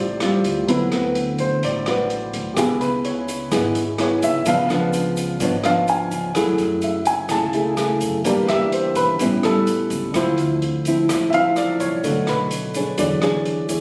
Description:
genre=bossa nova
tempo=127 BPM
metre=4/4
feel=straight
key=unclear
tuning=A4 = 440 Hz
part: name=nylon-string guitar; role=accompaniment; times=0.0-13.8 s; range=G#2 to C#5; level=-24 LUFS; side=equal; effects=none
part: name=warm baby grand piano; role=accompaniment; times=0.0-13.8 s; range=D3 to A5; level=-24 LUFS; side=equal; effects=none
part: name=upright bass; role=bass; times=0.0-13.8 s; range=G#1 to F#2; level=-34 LUFS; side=equal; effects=none
part: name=open jazz drum kit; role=drums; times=0.2-13.8 s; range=hi-hat, kick drum, rim click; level=-32 LUFS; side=equal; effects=none
part: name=tube shaker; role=percussion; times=2.6-13.8 s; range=none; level=-40 LUFS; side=equal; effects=none
room=light reverb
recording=recorded on a phone in the room, studio reverb, compression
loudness=-20 LUFS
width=mono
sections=0.0-13.8 A section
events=grand piano solo 0.0-13.8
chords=0.0 Dm7; 0.7 D13; 2.6 C#m7; 4.5 C#7b9; 6.4 F#m9; 8.3 Em7b5; 9.2 A7; 10.1 Dm9; 12.0 Bm7; 13.0 E13

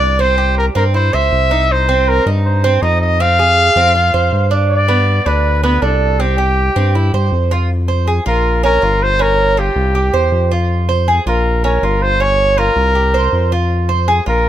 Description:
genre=latin, Cuban son and guajira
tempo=160 BPM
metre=4/4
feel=straight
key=F minor from 7.7 s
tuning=A4 = 440 Hz
part: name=warm trumpet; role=melody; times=0.0-14.5 s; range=G4 to F5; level=-15 LUFS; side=left 1 dB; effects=none
part: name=Cuban tres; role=arpeggios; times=0.0-14.5 s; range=B3 to C5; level=-18 LUFS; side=right 5 dB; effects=none
part: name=round analog bass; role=bass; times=0.0-14.5 s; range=G1 to G2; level=-15 LUFS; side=left 1 dB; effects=none
room=light reverb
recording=close, detailed microphones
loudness=-11 LUFS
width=side -11 dB against mid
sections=0.0-7.7 A section; 7.7-14.5 B section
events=none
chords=0.2 C; 1.7 Cm; 3.2 Fm; 4.7 G; 6.2 C; 7.7 Fm; 8.4 Bbm; 9.2 Gm7b5; 9.9 C; 10.7 Fm; 11.4 Bbm; 12.2 Gm7b5; 13.0 C5; 13.7 Fm

